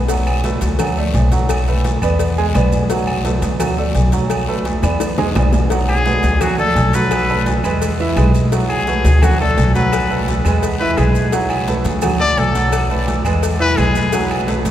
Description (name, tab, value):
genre	latin, salsa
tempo	171 BPM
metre	4/4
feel	straight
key	unclear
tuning	A4 = 441 Hz
part	bright concert grand piano	accompaniment	0.0-14.7 s	E3 to G#5	-21 LUFS	right 2 dB	none
part	upright bass	bass	0.0-14.7 s	B1 to E2	-17 LUFS	equal	none
part	agogo bells and timbales	percussion	0.1-14.7 s	none	-26 LUFS	right 4 dB	none
part	congas	percussion	0.1-14.7 s	none	-25 LUFS	equal	none
part	cowbell and bongos	percussion	0.1-14.7 s	none	-27 LUFS	left 6 dB	none
part	guiro	percussion	0.1-14.7 s	none	-34 LUFS	left 6 dB	none
part	maracas	percussion	0.1-14.7 s	none	-35 LUFS	right 5 dB	none
part	claves	percussion	0.3-14.5 s	none	-34 LUFS	left 3 dB	none
part	bright trumpet	melody	5.9-14.3 s	F#4 to D5	-20 LUFS	left 2 dB	none
room	wet cathedral reverb, RT60 5.8 s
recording	recorded in a church or concert hall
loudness	-14 LUFS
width	side -11 dB against mid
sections	0.0-5.7 A section; 5.7-14.7 B section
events	drum fill 4.8-5.7; trumpet solo 5.7-14.7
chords	0.1 Bm7; 2.2 E7; 2.9 Bm7; 5.0 E7; 5.7 Bm7; 7.1 B5; 7.8 E; 8.5 Bm7; 9.9 B5; 10.6 E; 11.3 Bm7; 12.7 B5; 13.4 E; 14.1 B7(no3)